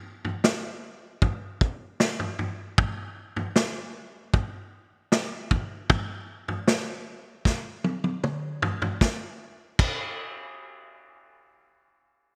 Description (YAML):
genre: dream pop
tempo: 77 BPM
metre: 4/4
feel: straight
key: none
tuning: none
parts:
  - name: vintage drum kit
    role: drums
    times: 0.2-10.0 s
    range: crash cymbal, kick drum, snare drum, toms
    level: -27 LUFS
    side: equal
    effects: none
room: light reverb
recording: bright 1980s-style digital production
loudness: -28 LUFS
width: mono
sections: 0.0-9.0 A section; 9.0-12.1 B section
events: drum fill 7.5-9.0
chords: none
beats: 0.44 1.22 2.00 | 2.78 3.56 4.34 5.12 | 5.89 6.67 7.45 8.23 | 9.01 9.79